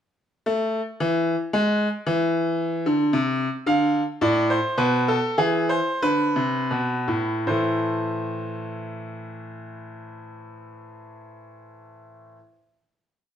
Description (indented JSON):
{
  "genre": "classical, baroque-style two-part invention for grand piano",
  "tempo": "75-113 BPM",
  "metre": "3/4",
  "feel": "straight",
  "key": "A minor",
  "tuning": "A4 = 444 Hz",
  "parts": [
    { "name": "bright concert grand piano", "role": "solo", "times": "0.5-12.4 s", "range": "A2 to F5", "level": "-22 LUFS", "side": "equal", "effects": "none" }
  ],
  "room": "wet stone room reverb, RT60 1.0 s",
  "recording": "none",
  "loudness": "-21 LUFS",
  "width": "side -9 dB against mid",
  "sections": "0.5-7.5 exposition; 7.5-12.2 final chord",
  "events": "slowing down 2.9-7.5",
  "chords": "0.5 N.C.; 3.7 Dm; 4.8 Asus2/B; 5.4 E7; 7.5 Am"
}